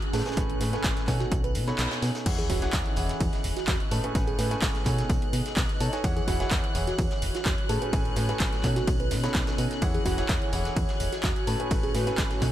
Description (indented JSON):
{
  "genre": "piano house",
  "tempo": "127 BPM",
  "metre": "4/4",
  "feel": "straight",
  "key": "E major",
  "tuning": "A4 = 440 Hz",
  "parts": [
    { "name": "clear studio violin section", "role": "sustained chords", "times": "0.0-12.5 s", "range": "F#6", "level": "-40 LUFS", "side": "left 2 dB", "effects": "sidechain pumping" },
    { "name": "bright concert grand piano", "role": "riff", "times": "0.0-12.5 s", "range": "A2 to B5", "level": "-32 LUFS", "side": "right 1 dB", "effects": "sidechain pumping, ping-pong delay" },
    { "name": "punchy analog drum machine", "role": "drums", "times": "0.0-12.5 s", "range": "crash cymbal, handclaps, hi-hat, ride cymbal", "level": "-34 LUFS", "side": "right 1 dB", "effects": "overdrive" },
    { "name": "granular cloud pad", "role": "texture", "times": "0.0-12.5 s", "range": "C#4 to G#5", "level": "-36 LUFS", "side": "right 1 dB", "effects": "built-in reverb, sidechain pumping" },
    { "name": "bell-like FM electric piano", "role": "melody", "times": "0.1-12.5 s", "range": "F#4 to B4", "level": "-36 LUFS", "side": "right 2 dB", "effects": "chorus, ping-pong delay" },
    { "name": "solid FM bass", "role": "bass", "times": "0.1-12.5 s", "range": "E1 to B2", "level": "-30 LUFS", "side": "equal", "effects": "tube saturation, sidechain pumping" },
    { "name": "crunchy breakbeat drum kit", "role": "drums", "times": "0.1-12.5 s", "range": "hi-hat, snare drum", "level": "-42 LUFS", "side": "equal", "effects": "none" },
    { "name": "electronic kick drum", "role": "drums", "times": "0.4-12.5 s", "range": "none", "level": "-28 LUFS", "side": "equal", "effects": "overdrive" },
    { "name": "sub drop", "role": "sound effects", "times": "2.3-4.2 s", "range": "none", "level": "-38 LUFS", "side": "equal", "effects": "none" }
  ],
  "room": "light reverb, small room ambience",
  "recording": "none",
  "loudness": "-24 LUFS",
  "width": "side -12 dB against mid",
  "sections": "0.0-2.3 A section; 2.3-12.5 B section",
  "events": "kick drops out 1.8-2.3; band accent 1.8; drop 2.3-12.5; impact 2.3-4.2",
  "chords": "0.1 Amaj9; 1.1 B13; 2.3 E69; 3.9 Amaj9; 4.9 B13; 6.0 E69; 7.7 Amaj9; 8.6 B13; 9.8 E69; 11.5 Amaj9"
}